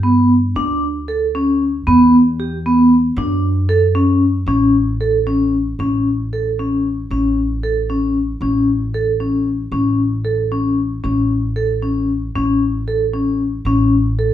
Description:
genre	contemporary instrumental, chamber music in an uneven meter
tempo	230 BPM (eighths)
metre	5/8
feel	straight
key	A mixolydian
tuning	A4 = 440 Hz
part	vibraphone with medium hard mallets	arpeggios	0.0-14.3 s	B3 to A4	-15 LUFS	equal	none
part	upright bass	bass	0.0-14.3 s	A1 to G2	-20 LUFS	equal	none
room	wet studio reverb, RT60 0.8 s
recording	heard from further back in the room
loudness	-14 LUFS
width	side -11 dB against mid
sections	0.0-5.8 A section; 5.8-14.3 B section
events	none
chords	0.0 G; 0.6 D5; 1.9 E5; 3.2 Dmaj7/F#; 4.5 A

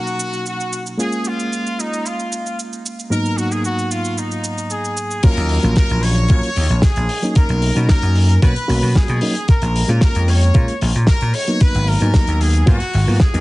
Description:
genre	nu-disco, nu disco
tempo	113 BPM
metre	4/4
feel	straight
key	Eb minor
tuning	A4 = 438 Hz
part	brilliant trumpet section	melody	0.0-13.4 s	Eb4 to Db5	-24 LUFS	equal	tape echo
part	reed electric piano	accompaniment	0.0-13.4 s	Ab2 to F#4	-22 LUFS	equal	fast tremolo, sidechain pumping
part	damped 70s drum kit	drums	0.1-13.4 s	cabasa, crash cymbal, hi-hat, snare drum	-25 LUFS	equal	studio reverb
part	vintage slap bass	bass	5.2-13.4 s	Ab1 to B2	-16 LUFS	equal	tube saturation
part	electronic kick drum	drums	5.2-13.3 s	none	-13 LUFS	equal	overdrive, studio reverb
room	light reverb, studio ambience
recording	heavily compressed radio sound, multiband compression, nothing above 10.4 kHz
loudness	-14 LUFS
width	side -20 dB against mid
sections	0.0-5.2 A section; 5.2-13.4 B section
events	filter sweep on reed electric piano 0.0-5.2; drop 5.2-13.4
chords	0.0 Bmaj7; 1.0 Bbm7; 3.1 Abm9; 5.2 Ebm9; 7.4 Bmaj7; 9.5 Bbm7; 11.6 Abm9

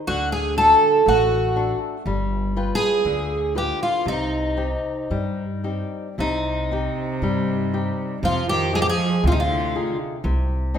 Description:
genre	fado-style ballad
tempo	60 BPM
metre	2/4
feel	rubato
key	C harmonic minor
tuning	A4 = 439 Hz
part	fingerpicked twelve-string acoustic guitar	melody	0.0-10.0 s	Eb4 to A4	-20 LUFS	right 1 dB	none
part	flamenco guitar	accompaniment	0.0-10.8 s	C3 to G5	-27 LUFS	left 3 dB	none
part	upright bass	bass	0.1-10.8 s	G1 to G2	-26 LUFS	equal	none
part	rich cello	second line	6.2-10.0 s	C3 to F3	-27 LUFS	right 4 dB	none
room	moderate recital hall reverb, RT60 1.5 s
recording	minimal, uncompressed stereo recording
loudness	-19 LUFS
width	side -8 dB against mid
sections	0.0-6.2 A section; 6.2-10.8 A section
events	none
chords	0.1 D; 2.1 G7; 4.1 Cm; 8.2 Fm7; 10.2 N.C.

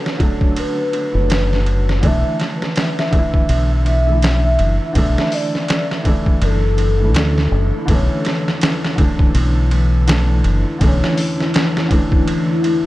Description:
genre	trip hop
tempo	82 BPM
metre	4/4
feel	swing 58% on 16ths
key	B minor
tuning	A4 = 440 Hz
part	felt-muted upright piano	accompaniment	0.0-12.9 s	D3 to E4	-21 LUFS	equal	tremolo, tape echo
part	trip hop sampler-style drum kit	drums	0.1-12.8 s	hi-hat, kick drum, ride cymbal, snare drum	-19 LUFS	equal	vintage 12-bit sampler grit
part	pure breathy sine lead	melody	0.6-7.8 s	A4 to E5	-23 LUFS	left 1 dB	lush chorus, cassette tape, tape echo
part	deep dub fingered electric bass	bass	1.1-11.0 s	F#1 to D2	-15 LUFS	equal	none
part	dark analog pad	sustained chords	8.3-12.9 s	E3 to E4	-22 LUFS	left 2 dB	wide subtle chorus
room	digital ambience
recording	echo-heavy mix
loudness	-14 LUFS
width	side -17 dB against mid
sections	0.0-7.9 A section; 7.9-12.9 B section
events	none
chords	0.0 Bm7; 2.0 Dsus2; 7.9 Bm11

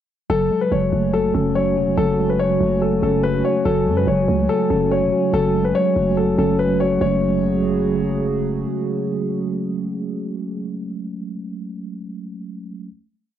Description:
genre	hip hop, drill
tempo	143 BPM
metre	4/4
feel	half-time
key	F# minor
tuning	A4 = 440 Hz
part	dark grand piano	melody	0.3-8.2 s	A4 to C#5	-20 LUFS	left 5 dB	none
part	mellow tine electric piano	accompaniment	0.3-12.9 s	F#3 to F#4	-22 LUFS	right 2 dB	medium stereo tremolo, cassette tape
part	hollow soft pad	sustained chords	0.6-10.6 s	C#3 to G#5	-26 LUFS	right 4 dB	chorus, cassette tape
part	growling 808-style bass	bass	0.3-8.6 s	E1 to F#2	-24 LUFS	right 2 dB	none
room	light reverb, digital ambience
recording	home recording on cassette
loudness	-17 LUFS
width	side -10 dB against mid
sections	0.3-7.0 breakdown; 7.0-10.4 final chord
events	none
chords	0.3 F#madd9

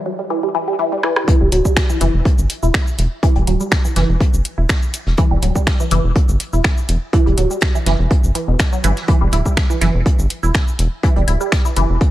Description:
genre	minimal techno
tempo	123 BPM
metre	4/4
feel	swing 53% on 16ths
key	E minor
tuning	A4 = 444 Hz
part	resonant blip pluck	riff	0.1-11.8 s	B2 to E4	-21 LUFS	right 1 dB	phaser, vintage 12-bit sampler grit, sidechain pumping, analog delay
part	booming analog drum machine	drums	1.0-11.9 s	finger snaps, hi-hat, rim click, shaker	-22 LUFS	equal	high-pass filter on perc, high-pass filter on hats, high-pass filter on snare
part	electronic kick drum	drums	1.3-12.1 s	none	-15 LUFS	equal	overdrive
part	vintage brush drum kit	drums	1.3-12.1 s	hi-hat, snare drum	-32 LUFS	left 2 dB	sidechain pumping on hats, high-pass filter on hats, high-pass filter on snare, high-pass filter on room
part	rubbery square bass	bass	1.4-12.0 s	D1 to G1	-16 LUFS	equal	sidechain pumping
room	light reverb, digital ambience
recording	high-pass filter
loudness	-14 LUFS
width	side -14 dB against mid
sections	0.0-1.3 A section; 1.3-12.1 B section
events	break 0.0-1.3; build-up 0.0-1.3; filter sweep on synth arpeggio sound 0.0-1.3; filter sweep 0.0-1.3; drum fill 1.0; drop 1.3-12.1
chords	0.0 Em

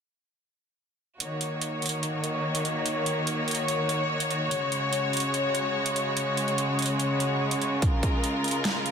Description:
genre	heavy wobble dubstep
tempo	145 BPM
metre	4/4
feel	half-time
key	Eb minor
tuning	A4 = 439 Hz
part	clear studio string section	sustained chords	1.2-8.9 s	Db3 to Db5	-26 LUFS	left 1 dB	sidechain pumping
part	big-room dance drum kit	drums	1.2-8.9 s	hi-hat, snare drum	-30 LUFS	right 3 dB	none
part	electronic kick drum	drums	7.8-8.1 s	none	-24 LUFS	equal	none
room	moderate digital room reverb, RT60 1.3 s, digital ambience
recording	none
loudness	-25 LUFS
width	side -7 dB against mid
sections	1.2-8.9 A section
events	none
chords	1.2 Ebm7; 4.5 Dbsus4; 7.8 Bbm7

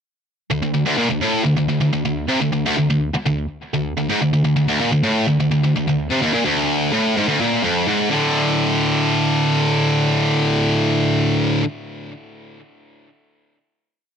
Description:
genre	metal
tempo	126 BPM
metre	4/4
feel	straight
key	unclear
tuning	A4 = 440 Hz
part	high-gain distorted guitar	solo	0.5-11.6 s	D2 to D3	-16 LUFS	equal	distortion
room	light reverb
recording	dark, warm production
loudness	-16 LUFS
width	side -7 dB against mid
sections	0.5-8.1 riff; 8.1-11.9 final chord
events	none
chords	0.5 N.C.; 8.1 D5

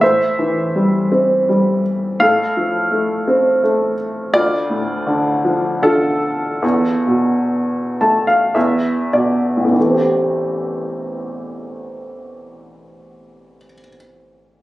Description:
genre	classical, lyrical solo piano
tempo	45-85 BPM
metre	3/4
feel	rubato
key	A minor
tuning	A4 = 440 Hz
part	warm upright piano	solo	0.0-14.6 s	A1 to A5	-15 LUFS	equal	none
room	light reverb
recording	recorded on a phone in the room, club reverb, compression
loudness	-14 LUFS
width	side -16 dB against mid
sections	0.0-9.8 A section; 9.8-13.6 B section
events	slowing down 4.3-9.8; upright piano fill 7.5-9.8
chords	0.0 Am7; 2.2 F/A; 4.3 Dm; 6.6 Esus4; 8.6 E5; 9.8 Am7

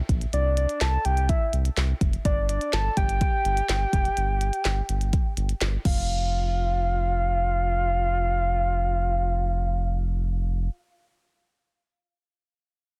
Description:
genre	synth-pop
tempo	125 BPM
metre	4/4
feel	straight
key	F major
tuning	A4 = 440 Hz
part	round analog bass	bass	0.1-10.7 s	F1 to C2	-28 LUFS	equal	none
part	glitchy drum kit	drums	0.1-6.0 s	crash cymbal, handclaps, hi-hat, kick drum, snare drum	-28 LUFS	equal	none
part	soft octave-layered synth lead	melody	0.3-10.7 s	D5 to A5	-29 LUFS	equal	chorus, delay
room	little or no reverb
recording	dense, heavily limited modern master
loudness	-25 LUFS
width	mono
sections	0.0-6.1 A section; 6.1-9.9 B section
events	none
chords	0.0 Fmaj13 (rootless); 2.3 Fsus2 (rootless); 5.9 N.C.

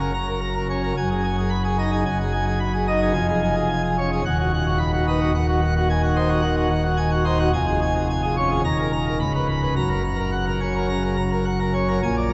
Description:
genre	classical, organ toccata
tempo	109 BPM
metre	4/4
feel	straight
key	F# major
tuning	A4 = 440 Hz
part	pipe organ, plenum	solo	0.0-12.3 s	C#1 to B5	-22 LUFS	equal	none
room	wet cathedral reverb, RT60 5.5 s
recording	recorded in a church or concert hall, vinyl crackle, nothing above 7.8 kHz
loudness	-22 LUFS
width	mono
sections	0.0-12.0 A section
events	none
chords	0.0 F#; 1.0 G#m7/F#; 3.2 C#/E#; 4.2 B/D#; 5.3 G#7/D#; 7.5 C#/E#; 8.6 D#5; 9.2 Bsus2/C#; 9.8 F#

